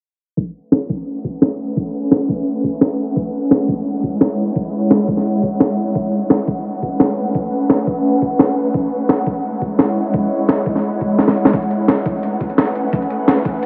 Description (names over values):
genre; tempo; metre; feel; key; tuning
liquid drum and bass; 172 BPM; 4/4; straight; A major; A4 = 440 Hz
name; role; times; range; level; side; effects
ethereal airy pad; sustained chords; 1.0-13.7 s; G#3 to F#5; -21 LUFS; equal; ensemble chorus, built-in reverb, sidechain pumping
electronic kick drum; drums; 0.4-13.5 s; none; -24 LUFS; equal; overdrive, high-pass filter on kick, high-pass filter on room
breakbeat sampler-style drum kit; drums; 0.7-13.7 s; hi-hat, snare drum; -20 LUFS; equal; low-pass filter on snare, low-pass filter on hats
room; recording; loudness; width
wet huge ambient reverb, RT60 6.8 s; dreamy mix soaked in reverb, low-pass filter; -17 LUFS; mono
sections
0.4-13.7 A section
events
filter sweep on drum 0.4-13.7; filter sweep 0.4-13.7; kick drops out 11.2-11.5; drum fill 11.2-11.5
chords
0.4 A69; 3.2 E69; 6.0 A69; 8.7 E69; 11.5 A69